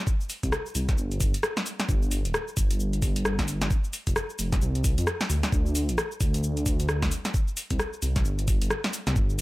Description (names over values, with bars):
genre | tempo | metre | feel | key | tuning
UK garage, two-step garage | 132 BPM | 4/4 | swing 60% on 16ths | unclear | A4 = 440 Hz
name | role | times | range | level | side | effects
electronic kick drum | drums | 0.1-9.3 s | none | -26 LUFS | equal | none
garage drum kit | drums | 0.1-9.4 s | cabasa, hi-hat, rim click, snare drum | -30 LUFS | equal | none
dark detuned saw bass | bass | 0.4-9.4 s | D1 to F2 | -27 LUFS | equal | none
room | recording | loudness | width
little or no reverb | none | -24 LUFS | side -19 dB against mid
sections
0.0-9.4 A section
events
none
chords
none